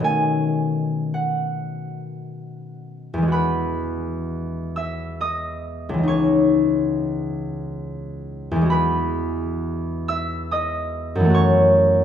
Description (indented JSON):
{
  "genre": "classical, solo harp piece",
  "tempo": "48-74 BPM",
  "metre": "3/4",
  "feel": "rubato",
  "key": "E major",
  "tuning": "A4 = 440 Hz",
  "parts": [
    { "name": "concert harp", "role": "solo", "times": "0.0-12.0 s", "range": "C#2 to E6", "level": "-20 LUFS", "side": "left 1 dB", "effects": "none" }
  ],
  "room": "moderate recital hall reverb, RT60 1.6 s",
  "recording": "none",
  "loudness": "-19 LUFS",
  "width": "side -9 dB against mid",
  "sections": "0.0-3.3 A section; 3.3-12.0 B section",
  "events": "none",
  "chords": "0.0 B13; 3.3 Eadd9; 6.1 C#madd9; 8.7 E69; 11.4 F#m7"
}